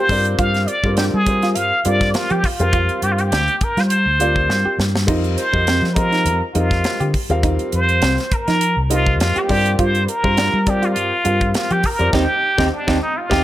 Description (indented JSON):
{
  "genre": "electric jazz fusion",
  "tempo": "102 BPM",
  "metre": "4/4",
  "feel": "swing 54% on 16ths",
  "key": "unclear",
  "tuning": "A4 = 441 Hz",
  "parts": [
    { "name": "trumpet with plunger mute", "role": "melody", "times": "0.0-13.4 s", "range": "D4 to F5", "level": "-19 LUFS", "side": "equal", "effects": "plate reverb" },
    { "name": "warm grand piano", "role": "accompaniment", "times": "0.0-13.4 s", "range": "G3 to F5", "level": "-24 LUFS", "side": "left 1 dB", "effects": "plate reverb" },
    { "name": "semi-hollow electric guitar", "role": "stabs", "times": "0.0-13.4 s", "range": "C4 to G4", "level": "-24 LUFS", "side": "right 2 dB", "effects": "lush chorus, plate reverb" },
    { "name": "fingered electric bass", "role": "bass", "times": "0.1-13.4 s", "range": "C2 to G3", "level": "-20 LUFS", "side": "equal", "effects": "none" },
    { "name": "crisp fusion drum kit", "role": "drums", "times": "0.1-13.4 s", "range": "crash cymbal, hi-hat, kick drum, snare drum", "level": "-22 LUFS", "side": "equal", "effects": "none" }
  ],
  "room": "light reverb",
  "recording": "none",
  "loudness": "-15 LUFS",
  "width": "side -14 dB against mid",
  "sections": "0.0-13.4 A section",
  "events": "drum fill 4.5-5.1, 12.1-13.4; band accent 12.1-13.4",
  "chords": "0.1 Gm7; 5.1 Fsus2; 9.5 Gm7; 12.1 Eb69"
}